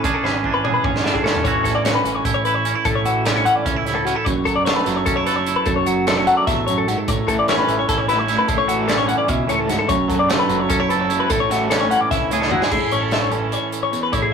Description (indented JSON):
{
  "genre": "math rock and midwest emo",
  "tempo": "298 BPM (eighths)",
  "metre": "7/8",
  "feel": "straight",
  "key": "A major",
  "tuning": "A4 = 440 Hz",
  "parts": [
    { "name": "twangy electric guitar", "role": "accompaniment", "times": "0.0-14.3 s", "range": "E2 to A4", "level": "-21 LUFS", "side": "right 5 dB", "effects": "none" },
    { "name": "twelve-string electric guitar", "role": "arpeggios", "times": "0.0-14.3 s", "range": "F#4 to F#5", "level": "-20 LUFS", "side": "left 5 dB", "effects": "none" },
    { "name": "growling picked electric bass", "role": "bass", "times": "0.0-14.3 s", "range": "F#1 to C#2", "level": "-30 LUFS", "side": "equal", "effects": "overdrive" },
    { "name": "modern studio drum kit", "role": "drums", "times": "0.0-14.2 s", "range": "crash cymbal, hi-hat, kick drum, snare drum, toms", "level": "-23 LUFS", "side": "right 1 dB", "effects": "none" },
    { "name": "crunchy overdriven guitar", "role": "riff", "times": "7.3-12.7 s", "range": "F#3 to A4", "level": "-26 LUFS", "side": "left 1 dB", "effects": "tremolo" }
  ],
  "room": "moderate small room ambience, RT60 0.5 s",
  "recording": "rough rehearsal-room recording",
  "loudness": "-16 LUFS",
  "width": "side -6 dB against mid",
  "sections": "0.0-1.4 A section; 1.4-12.7 B section; 12.7-14.3 C section",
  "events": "drum fill 0.2-1.4, 12.4-12.7",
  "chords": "0.0 E13; 1.4 A6; 4.3 F#m7; 7.1 A6; 9.9 F#m7; 11.3 Amaj7"
}